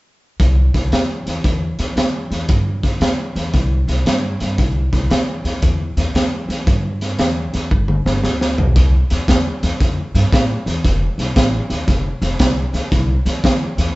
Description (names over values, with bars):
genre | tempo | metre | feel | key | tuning
electric blues shuffle | 115 BPM | 4/4 | swing 66% on 8ths | C major | A4 = 440 Hz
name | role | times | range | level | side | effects
upright bass | bass | 0.4-13.9 s | F1 to A2 | -19 LUFS | equal | none
crunchy breakbeat drum kit | drums | 0.4-13.9 s | hi-hat, kick drum, snare drum, toms | -17 LUFS | equal | none
room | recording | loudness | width
light reverb | band playing live in one room, nothing above 7.9 kHz | -15 LUFS | side -20 dB against mid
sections
0.4-8.8 A section; 8.8-14.0 B section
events
drum fill 7.7-8.8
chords
none